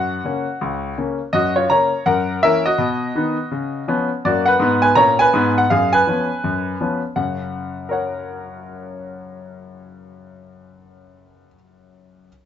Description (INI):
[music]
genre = jazz, stride piano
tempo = 165 BPM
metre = 4/4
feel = swing 62% on 8ths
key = F# major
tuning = A4 = 439 Hz
[part]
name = clear grand piano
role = solo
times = 0.0-12.3 s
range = C#2 to A#5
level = -17 LUFS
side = left 1 dB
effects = none
[sound]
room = moderate studio reverb, RT60 0.8 s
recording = nothing above 7.8 kHz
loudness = -16 LUFS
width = side -9 dB against mid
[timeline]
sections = 0.0-1.3 A section; 1.3-7.2 B section; 7.2-10.1 C section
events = none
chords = 0.0 F#; 2.1 F#7; 2.8 B; 3.5 C#7; 4.2 B5/F#; 5.7 C#7/F#; 7.2 F#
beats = 0.24 0.61 0.97 | 1.34 1.70 2.06 2.43 | 2.79 3.16 3.52 3.88 | 4.25 4.61 4.97 5.34 | 5.70 6.06 6.43 6.79 | 7.15 7.52 7.88 8.25 | 8.61 8.97 9.34 9.70